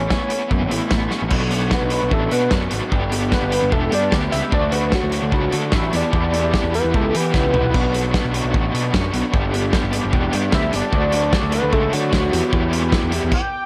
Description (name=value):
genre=indie rock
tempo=150 BPM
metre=4/4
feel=straight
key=unclear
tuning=A4 = 440 Hz
part: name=lead with added fifth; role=melody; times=0.0-13.7 s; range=F#4 to G5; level=-25 LUFS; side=equal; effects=chorus
part: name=electric guitar through a small old amp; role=riff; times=0.0-13.3 s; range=B2 to G4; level=-28 LUFS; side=equal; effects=lush chorus, analog delay
part: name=raw garage guitar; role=riff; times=0.0-13.3 s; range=E3 to G4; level=-28 LUFS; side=equal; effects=overdrive, tremolo
part: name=fuzz picked electric bass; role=bass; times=0.0-13.3 s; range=E1 to E3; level=-25 LUFS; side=equal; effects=overdrive
part: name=loose indie drum kit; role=drums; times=0.1-13.4 s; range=crash cymbal, hi-hat, kick drum, snare drum, splash cymbal, toms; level=-24 LUFS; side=equal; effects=none
room=light reverb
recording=none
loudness=-19 LUFS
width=mono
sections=0.0-1.3 A section; 1.3-13.7 B section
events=drum fill 1.1, 7.3-7.7; analog synth lead solo 1.3-13.7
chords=0.0 Aadd9; 1.3 Bm; 2.9 G; 4.5 D; 5.9 Em; 7.7 Bm; 9.3 G; 10.9 D; 12.3 Em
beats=0.11 0.51 0.91 | 1.31 1.72 2.12 2.52 | 2.92 3.32 3.73 4.13 | 4.53 4.93 5.33 5.73 | 6.13 6.53 6.93 7.33 | 7.74 8.14 8.54 8.94 | 9.33 9.73 10.13 10.53 | 10.93 11.33 11.73 12.12 | 12.52 12.92 13.32